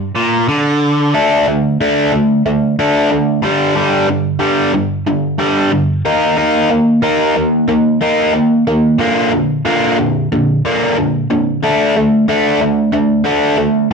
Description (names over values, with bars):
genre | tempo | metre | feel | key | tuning
rock | 92 BPM | 4/4 | straight | unclear | A4 = 437 Hz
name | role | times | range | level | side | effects
biting overdriven guitar | solo | 0.0-13.9 s | G2 to Eb4 | -11 LUFS | equal | none
room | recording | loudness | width
wet studio reverb, RT60 0.7 s | none | -11 LUFS | side -5 dB against mid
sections
0.0-1.1 A section; 1.1-13.9 B section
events
none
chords
0.0 Gm (rootless); 1.1 D5; 3.4 G5; 6.1 Eb5; 9.0 Bb; 11.6 D5